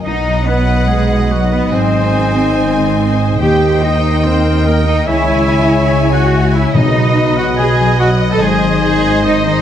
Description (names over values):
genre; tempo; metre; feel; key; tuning
cinematic; 143 BPM; 4/4; straight; unclear; A4 = 440 Hz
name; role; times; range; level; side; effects
rich studio violin section; melody; 0.0-9.6 s; D#5 to G#5; -22 LUFS; left 3 dB; none
clear oboe; second line; 0.0-9.6 s; F#4 to A5; -24 LUFS; right 1 dB; none
rich chamber violin section; second line; 0.0-9.6 s; D#5 to E5; -31 LUFS; left 2 dB; none
concert harp; arpeggios; 0.0-9.6 s; G#2 to D#5; -20 LUFS; left 8 dB; none
clear trumpet; stabs; 0.0-9.6 s; B4 to D#5; -22 LUFS; right 4 dB; none
rich symphonic double bass section; bass; 0.0-9.6 s; G#1 to D#2; -16 LUFS; right 2 dB; none
bright clarinet; second line; 0.1-9.6 s; F#4 to A5; -23 LUFS; left 2 dB; none
rich symphonic viola section; accompaniment; 0.1-9.6 s; A#4 to D#5; -25 LUFS; equal; none
mellow French horn section; sustained chords; 0.1-9.6 s; F#3 to F#4; -21 LUFS; left 3 dB; none
rich studio cello section; bass; 0.1-9.6 s; F#3 to A4; -17 LUFS; right 2 dB; none
timpani; percussion; 6.7-7.3 s; B2; -17 LUFS; equal; none
room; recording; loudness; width
moderate scoring stage reverb, RT60 1.8 s; none; -10 LUFS; side -10 dB against mid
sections
0.0-9.6 A section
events
none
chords
0.0 B; 1.7 G#; 3.4 D#; 5.1 C#m; 6.8 B; 8.4 G#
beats
| 0.05 0.47 0.90 1.32 | 1.74 2.15 2.58 3.00 | 3.42 3.83 4.25 4.67 | 5.09 5.50 5.92 6.34 | 6.76 7.17 7.59 8.01 | 8.42 8.84 9.26